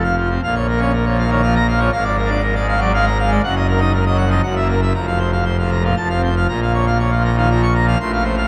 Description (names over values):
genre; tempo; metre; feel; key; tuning
classical, organ toccata; 119 BPM; 3/4; straight; Bb minor; A4 = 440 Hz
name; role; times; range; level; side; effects
pipe organ, full organ; solo; 0.0-8.5 s; F1 to Db6; -17 LUFS; equal; none
room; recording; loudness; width
wet huge ambient reverb, RT60 8.1 s; in a vast, echoing space; -17 LUFS; mono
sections
0.4-8.5 A section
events
none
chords
0.4 Bbm; 1.9 Bb7/Ab; 3.4 Ebm/Gb; 4.4 Gb7; 4.9 Fsus4; 6.0 F; 6.5 Bbm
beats
| 0.43 0.93 1.44 | 1.94 2.44 2.94 | 3.44 3.93 4.44 | 4.95 5.46 5.97 | 6.48 6.99 7.49 | 7.99